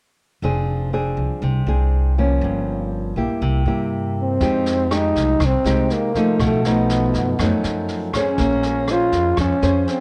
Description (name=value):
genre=bossa nova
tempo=121 BPM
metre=4/4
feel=straight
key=F minor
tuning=A4 = 441 Hz
part: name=nylon-string guitar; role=accompaniment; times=0.4-10.0 s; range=F#2 to C5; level=-24 LUFS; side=equal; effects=none
part: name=upright bass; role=bass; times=0.4-9.9 s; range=F1 to G2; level=-24 LUFS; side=equal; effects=none
part: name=growling trombone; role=melody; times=4.2-10.0 s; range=A3 to F4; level=-22 LUFS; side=equal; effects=none
part: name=jazz brush drum kit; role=drums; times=4.4-9.9 s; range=kick drum, rim click, snare drum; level=-30 LUFS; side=equal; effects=none
room=light reverb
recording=dark, warm production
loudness=-20 LUFS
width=mono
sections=0.4-4.4 A section; 4.4-10.0 B section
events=none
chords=0.4 Fm6; 2.4 Gm7b5; 3.4 C7; 4.4 Fm9; 6.4 B7#11; 8.4 Bbm9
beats=| 0.43 0.93 1.43 1.92 | 2.42 2.92 3.41 3.91 | 4.41 4.91 5.40 5.90 | 6.40 6.89 7.39 7.89 | 8.39 8.88 9.38 9.88